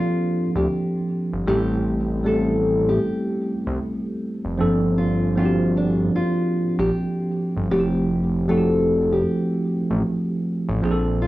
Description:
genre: lo-fi hip hop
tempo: 77 BPM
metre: 4/4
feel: swing 63% on 16ths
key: F major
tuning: A4 = 437 Hz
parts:
  - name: nylon-string guitar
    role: melody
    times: 0.0-11.3 s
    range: D4 to A4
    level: -25 LUFS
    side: left 2 dB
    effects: low-pass filter, tape echo
  - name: mellow tine electric piano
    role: accompaniment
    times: 0.0-11.3 s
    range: F3 to A4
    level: -22 LUFS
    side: right 1 dB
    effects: medium stereo tremolo, cassette tape, low-pass filter
  - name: fat analog bass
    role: bass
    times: 0.6-11.3 s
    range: F1 to D2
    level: -24 LUFS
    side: equal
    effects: transformer saturation
room: moderate studio reverb, RT60 0.6 s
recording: dry, gritty hardware recording, small room reverb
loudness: -19 LUFS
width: side -16 dB against mid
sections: 0.0-11.3 A section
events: none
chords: 0.0 Bbmaj9; 1.5 Am7; 4.6 Gm11; 7.7 Fmaj9

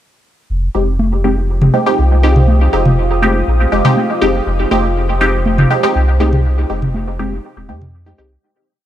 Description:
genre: dub techno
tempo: 121 BPM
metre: 4/4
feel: straight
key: F minor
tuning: A4 = 440 Hz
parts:
  - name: deep dark ambient pad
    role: sustained chords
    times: 1.5-8.4 s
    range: F4 to Eb6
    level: -22 LUFS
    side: right 1 dB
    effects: chorus, built-in reverb, vintage 12-bit sampler grit
  - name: pure sine sub bass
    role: bass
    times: 0.5-8.4 s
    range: Eb1 to F2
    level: -15 LUFS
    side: equal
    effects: none
  - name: filtered dub chord stab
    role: stabs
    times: 0.7-8.3 s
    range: Ab3 to G4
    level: -16 LUFS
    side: equal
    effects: chorus, phaser, dub echo
  - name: electronic congas and toms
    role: percussion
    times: 1.0-7.9 s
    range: none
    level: -17 LUFS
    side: equal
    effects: overdrive, dub echo
room: light reverb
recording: none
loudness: -11 LUFS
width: side -12 dB against mid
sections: 0.5-8.4 groove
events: fade-out 5.8-8.4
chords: 0.5 Fm7

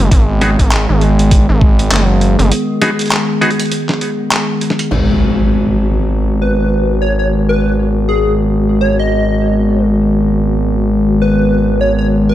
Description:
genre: glitch hop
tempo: 100 BPM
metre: 4/4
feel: swing 59% on 16ths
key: G# minor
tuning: A4 = 443 Hz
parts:
  - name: warbly tape-like pad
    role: sustained chords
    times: 0.0-12.3 s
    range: D#3 to G#4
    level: -17 LUFS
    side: left 1 dB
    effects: chorus, built-in reverb, vintage 12-bit sampler grit, sidechain pumping
  - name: gritty driven synth bass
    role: bass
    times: 0.0-12.3 s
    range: F#1 to G#1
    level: -13 LUFS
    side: equal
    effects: none
  - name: boom bap sampler-style drum kit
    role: drums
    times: 0.1-5.1 s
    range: crash cymbal, handclaps, hi-hat, snare drum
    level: -18 LUFS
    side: equal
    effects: low-pass filter on hats, studio reverb, low-pass filter on snare, low-pass filter on cymbals
  - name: electronic kick drum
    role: drums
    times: 0.1-1.8 s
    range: none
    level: -10 LUFS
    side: equal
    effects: studio reverb
  - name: clav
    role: stabs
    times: 0.4-3.5 s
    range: B3 to G#4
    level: -18 LUFS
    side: equal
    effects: sidechain pumping, tape echo
  - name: impact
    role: sound effects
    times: 4.9-7.3 s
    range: none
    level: -19 LUFS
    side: equal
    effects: none
  - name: plucky unison lead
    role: melody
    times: 6.4-12.3 s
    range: G#4 to D#5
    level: -18 LUFS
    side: equal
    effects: analog chorus, tape echo
room: light reverb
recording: none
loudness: -11 LUFS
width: side -13 dB against mid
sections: 0.0-4.9 A section; 4.9-12.3 B section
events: break 2.5-4.9; impact 4.9-7.3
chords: 0.0 G#m7

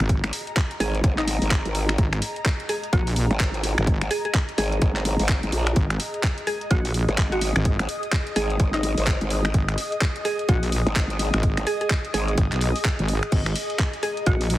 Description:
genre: bass house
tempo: 127 BPM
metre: 4/4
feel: swing 61% on 16ths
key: unclear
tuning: A4 = 439 Hz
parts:
  - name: wobble bass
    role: bass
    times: 0.0-14.6 s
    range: G#1 to B1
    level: -23 LUFS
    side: equal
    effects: chorus, sidechain pumping
  - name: garage drum kit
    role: drums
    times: 0.0-14.6 s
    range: crash cymbal, finger snaps, handclaps, hi-hat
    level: -28 LUFS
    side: equal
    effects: none
  - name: ethereal airy pad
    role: texture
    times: 0.0-14.6 s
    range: G#4 to D#6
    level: -32 LUFS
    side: left 1 dB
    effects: ensemble chorus, built-in reverb, sidechain pumping
  - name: electronic kick drum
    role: drums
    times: 0.1-14.4 s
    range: none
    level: -22 LUFS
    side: equal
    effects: none
  - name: growl bass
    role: bass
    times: 0.2-12.4 s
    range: G#1 to A#1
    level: -24 LUFS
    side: equal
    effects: chorus, tube saturation, sidechain pumping
  - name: mallet-like synth pluck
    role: melody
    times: 0.8-14.4 s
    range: D#4 to G#4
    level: -29 LUFS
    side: equal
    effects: lush chorus, digital delay
room: light reverb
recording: heavily compressed radio sound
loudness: -20 LUFS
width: side -15 dB against mid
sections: 0.0-14.6 A section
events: none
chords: 0.0 G#5

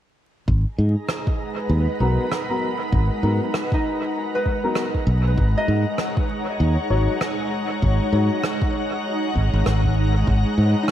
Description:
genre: ambient dub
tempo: 98 BPM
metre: 4/4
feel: swing 59% on 16ths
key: G# minor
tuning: A4 = 442 Hz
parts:
  - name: soft additive organ-like pad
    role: sustained chords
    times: 0.8-10.9 s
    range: G#3 to A#5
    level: -25 LUFS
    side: equal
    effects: ensemble chorus, built-in reverb
  - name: modern bright fingered electric bass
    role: bass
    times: 0.5-10.7 s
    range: G#1 to G#2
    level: -18 LUFS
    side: equal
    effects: none
  - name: electronic kick drum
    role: drums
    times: 0.5-10.4 s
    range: none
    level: -23 LUFS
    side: equal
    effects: overdrive
  - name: rim click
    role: drums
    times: 1.1-10.9 s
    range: none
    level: -30 LUFS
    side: right 1 dB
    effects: dub echo
  - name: warm upright piano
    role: stabs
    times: 2.0-8.3 s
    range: F#3 to C#5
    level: -29 LUFS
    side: left 4 dB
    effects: low-pass filter, dub echo
  - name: concert harp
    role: arpeggios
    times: 3.7-10.9 s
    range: D#4 to D#5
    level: -28 LUFS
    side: left 1 dB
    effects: dub echo
room: light reverb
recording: echo-heavy mix, vinyl crackle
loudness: -19 LUFS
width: side -11 dB against mid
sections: 0.5-10.9 A section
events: filter sweep on upright piano 0.5-10.9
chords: 0.5 G#m9

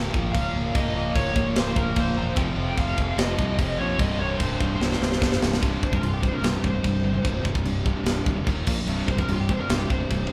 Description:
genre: heavy metal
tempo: 148 BPM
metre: 4/4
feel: straight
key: C phrygian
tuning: A4 = 436 Hz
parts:
  - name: high-gain lead guitar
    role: melody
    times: 0.0-10.3 s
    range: F4 to G5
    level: -33 LUFS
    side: equal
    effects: distortion
  - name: distorted electric guitar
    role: riff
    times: 0.0-10.3 s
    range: C2 to Bb3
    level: -32 LUFS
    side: equal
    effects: distortion
  - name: scooped high-gain guitar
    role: riff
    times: 0.0-10.3 s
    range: C2 to Bb3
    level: -36 LUFS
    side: equal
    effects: none
  - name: tight distorted guitar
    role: riff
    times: 0.0-10.3 s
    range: C2 to Bb3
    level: -34 LUFS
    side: equal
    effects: distortion
  - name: modern bright fingered electric bass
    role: bass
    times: 0.0-10.3 s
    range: C1 to C2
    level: -32 LUFS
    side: equal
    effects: none
  - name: tight metal drum kit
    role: drums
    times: 0.1-10.2 s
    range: crash cymbal, kick drum, snare drum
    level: -28 LUFS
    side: equal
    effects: none
room: light reverb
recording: band playing live in one room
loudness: -24 LUFS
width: mono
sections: 0.0-5.6 A section; 5.6-10.3 B section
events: drum fill 4.8-5.6; lead electric guitar solo 5.6-10.3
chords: 0.0 Bbm/Db; 2.4 F5; 4.0 C5; 8.5 Eb5; 8.7 Bb5; 8.9 C5

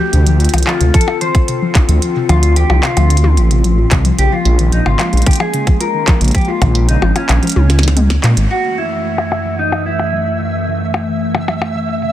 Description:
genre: IDM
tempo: 111 BPM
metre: 4/4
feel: straight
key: unclear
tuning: A4 = 440 Hz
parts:
  - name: mellow electric guitar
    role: melody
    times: 0.0-10.4 s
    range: C#4 to C5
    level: -20 LUFS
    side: left 1 dB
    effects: lush chorus, tape echo
  - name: warbly tape-like pad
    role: sustained chords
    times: 0.0-12.1 s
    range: F#2 to F4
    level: -21 LUFS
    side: left 1 dB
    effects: chorus, built-in reverb
  - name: warbly dusty pluck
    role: arpeggios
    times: 0.0-12.1 s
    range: C3 to F#4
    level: -21 LUFS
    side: left 3 dB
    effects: chorus, tape echo
  - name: dark detuned saw bass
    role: bass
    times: 0.1-8.5 s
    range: G#1 to A#2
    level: -12 LUFS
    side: equal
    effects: none
  - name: glitchy drum kit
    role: drums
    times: 0.1-11.7 s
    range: handclaps, hi-hat, percussion blips, snare drum, toms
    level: -20 LUFS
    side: left 1 dB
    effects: low-pass filter on hats, studio ambience, soft clipping on snare, low-pass filter on snare, low-pass filter on perc, low-pass filter on toms
  - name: electronic kick drum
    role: drums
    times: 0.9-6.7 s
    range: none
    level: -12 LUFS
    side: equal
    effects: studio ambience
  - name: flickering grainy texture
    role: texture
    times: 9.4-12.1 s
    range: E5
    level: -24 LUFS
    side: right 4 dB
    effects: built-in reverb, sidechain pumping
room: little or no reverb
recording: dense, heavily limited modern master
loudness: -11 LUFS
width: side -12 dB against mid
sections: 0.0-8.5 A section; 8.5-12.1 B section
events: kick drops out 7.4-8.5; drum fill 7.7-8.5; band accent 8.2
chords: 0.0 Dm7; 4.2 A#m7; 8.5 F#m7

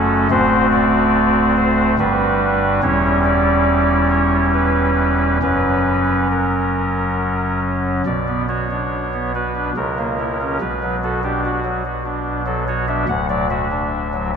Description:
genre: classical, chorale-style piece for pipe organ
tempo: 71 BPM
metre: 3/4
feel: rubato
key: B minor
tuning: A4 = 437 Hz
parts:
  - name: chamber organ, soft reed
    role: solo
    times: 0.0-14.4 s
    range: D1 to F#5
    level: -15 LUFS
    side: equal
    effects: none
room: wet church reverb, RT60 3.6 s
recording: none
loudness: -15 LUFS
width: side -6 dB against mid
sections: 0.0-8.1 A section; 8.1-14.4 B section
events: none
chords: 0.3 D7; 2.0 Gmaj7; 2.8 C#dim/E; 5.4 F#; 8.1 Bm; 9.8 A#dim/C#; 10.6 Bm; 13.1 D

